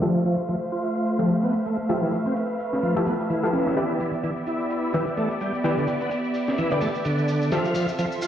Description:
breakbeat, breaks; 128 BPM; 4/4; swing 57% on 16ths; A4 = 440 Hz
rich symphonic string section; sustained chords; 0.0-8.3 s; A3 to F5; -27 LUFS; right 1 dB
bright tonewheel organ; riff; 0.0-8.3 s; D3 to F4; -26 LUFS; equal; overdrive, chorus vibrato, slow rotary speaker, low-pass filter, ping-pong delay
orchestra-hit-like synth stab; stabs; 0.0-7.6 s; E3 to F5; -27 LUFS; left 1 dB; built-in reverb, vintage 12-bit sampler grit, ping-pong delay
breakbeat sampler-style drum kit; drums; 0.0-8.3 s; hi-hat, snare drum; -32 LUFS; equal; low-pass filter on hats, low-pass filter on snare
shaker; drums; 0.0-8.3 s; -44 LUFS; left 2 dB
moderate lush hall reverb, RT60 2.1 s; played on a big sound system in a bare room, stone room reverb, vinyl crackle, low-pass filter; -22 LUFS; side -10 dB against mid
0.0-8.3 A section
filter sweep on tonewheel organ 0.0-8.3; filter sweep on synth stab 0.0-8.3; filter sweep on string section 0.0-8.3; filter sweep 0.0-8.3
0.0 Fmaj7; 3.8 Em7; 7.5 Fmaj7

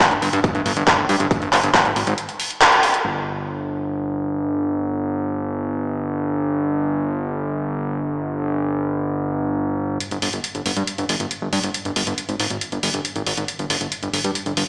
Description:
psychedelic trance; 138 BPM; 4/4; straight; A4 = 440 Hz
big-room dance drum kit; drums; 0.0-3.0, 10.0-14.7 s; handclaps, hi-hat; -22 LUFS; equal; low-pass filter on hats, low-pass filter on snare, low-pass filter on room
electronic kick drum; drums; 0.0-1.8 s; -23 LUFS; equal
fat analog bass; bass; 0.1-14.6 s; G1 to G2; -24 LUFS; equal
wet plate reverb, RT60 2.4 s; played on a big sound system in a bare room, large studio reverb, small speaker sound; -22 LUFS; mono
0.0-3.0 A section; 3.0-10.0 B section; 10.0-14.7 C section
drop 0.0-3.0; kick drops out 2.2-3.0; band accent 2.6; filter sweep on drum 3.0-10.0; build-up 10.0-14.7

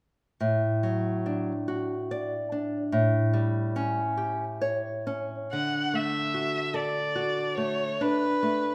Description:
romantic duo for violin and classical guitar; 48 BPM (dotted quarters); 12/8; rubato; D major; A4 = 440 Hz
nylon-string guitar; accompaniment; 0.4-8.7 s; A2 to D5; -29 LUFS; equal
rich violin; melody; 5.5-8.7 s; B4 to F#5; -30 LUFS; equal
wet recital hall reverb, RT60 1.6 s; -28 LUFS; mono
0.4-5.5 A section; 5.5-8.7 B section
0.4 D/A; 2.9 A7; 5.5 D

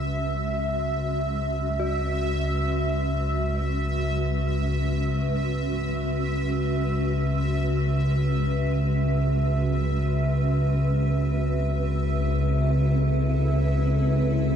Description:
dark ambient drone; free time; C# minor; A4 = 438 Hz
granular cloud pad; sustained chords; 0.0-14.6 s; G#3 to B4; -30 LUFS; right 1 dB; built-in reverb
dark detuned synth bell; arpeggios; 0.0-10.7 s; C#4 to F#4; -39 LUFS; left 3 dB; chorus, tape echo
deep rumbling drone; drone; 0.0-14.6 s; C#2 to C#3; -24 LUFS; equal; built-in reverb
bubbling stepped-filter texture; texture; 0.0-14.6 s; E5; -31 LUFS; right 1 dB; chorus, built-in reverb
wet huge ambient reverb, RT60 7.3 s; dark, warm production; -22 LUFS; side -8 dB against mid
0.0-14.6 A section
fade-in on ambient pad 0.0-14.6; fade-out on synth bell 0.0-14.6
0.0 C#m7; 10.6 Amadd9

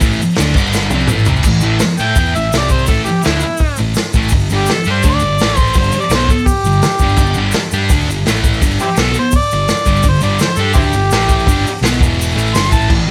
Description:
garage rock duo or trio; 168 BPM; 4/4; straight; A4 = 440 Hz
thick fuzz guitar; riff; 0.0-13.1 s; E2 to A4; -19 LUFS; equal; distortion
hollow-body short-scale picked electric bass; bass; 0.0-13.1 s; E1 to A2; -20 LUFS; equal; tube saturation
crunchy breakbeat drum kit; drums; 0.0-13.0 s; crash cymbal, hi-hat, kick drum, snare drum, toms; -18 LUFS; equal
tube shaker; percussion; 0.0-12.9 s; -31 LUFS; equal
overdriven harmonica; melody; 2.0-12.9 s; C4 to C6; -20 LUFS; equal
studio reverb; -14 LUFS; mono
0.0-1.5 A section; 1.5-12.9 B section
drum fill 0.7-1.5; harmonica solo 1.5-12.9
0.0 A5; 0.6 G5; 0.9 A5; 2.5 C5; 2.9 A5; 4.3 G5; 5.4 A5; 5.8 G5; 8.3 A5; 8.6 G5; 11.1 A5; 11.5 G5; 12.0 E5; 12.4 G5

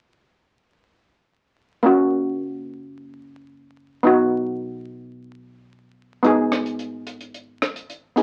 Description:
calypso; 109 BPM; 4/4; straight; F# major; A4 = 440 Hz
steel pan; accompaniment; 1.8-8.2 s; A#3 to G#4; -21 LUFS; equal
upright bass; bass; 1.8-8.2 s; F#1 to B1; -35 LUFS; equal
tight funk drum kit; drums; 6.2-8.2 s; hi-hat, rim click; -30 LUFS; equal
wet small room reverb, RT60 0.5 s; very old 78 rpm record, vinyl crackle; -21 LUFS; mono
1.9-8.2 A section
1.9 F#; 4.0 B; 6.2 G#m

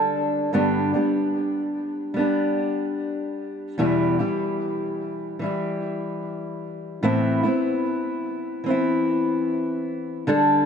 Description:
pop; 74 BPM; 4/4; straight; A4 = 440 Hz
fingerpicked steel-string acoustic guitar; solo; 0.0-10.7 s; E2 to A4; -22 LUFS; equal; digital delay
moderate lush hall reverb, RT60 3.0 s; nothing above 10.4 kHz; -22 LUFS; side -7 dB against mid
0.5-10.7 A section
0.0 Dsus4; 0.5 G; 3.8 Em; 7.0 Amadd9

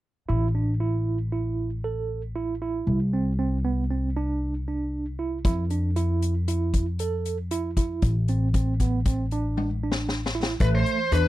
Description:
progressive instrumental, band music in an uneven meter; 116 BPM; 5/4; straight; A minor; A4 = 444 Hz
overdriven tine electric piano; arpeggios; 0.3-11.3 s; A3 to A4; -29 LUFS; right 4 dB; medium tremolo
upright bass; bass; 0.3-11.3 s; A1 to F2; -26 LUFS; equal
street-band drum kit; drums; 5.4-11.2 s; hi-hat, kick drum, snare drum, toms; -26 LUFS; left 1 dB
bluesy overdriven lead guitar; melody; 10.6-11.3 s; B4 to C5; -24 LUFS; left 2 dB; distortion
little or no reverb; dry, close 1970s-style studio recording; -23 LUFS; side -15 dB against mid
0.3-10.6 A section
drum fill 9.6-10.6
0.3 A5; 2.9 N.C.; 5.5 Fmaj7; 8.0 Am; 10.6 Asus2

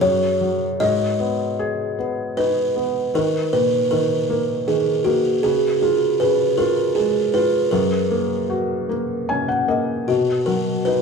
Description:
children's music, lullaby; 78 BPM; 3/4; rubato; B major; A4 = 444 Hz
buzzing kalimba; melody; 0.0-11.0 s; F#4 to D#5; -19 LUFS; right 2 dB
felt-muted upright piano; accompaniment; 0.0-11.0 s; F#2 to G#5; -22 LUFS; left 2 dB
moderate large studio reverb, RT60 1.2 s; band playing live in one room; -18 LUFS; side -5 dB against mid
0.0-10.1 A section
felt piano fill 8.9-10.1
0.0 N.C.; 0.8 G#m; 3.1 D#5; 5.4 C#; 7.7 F#; 10.1 B

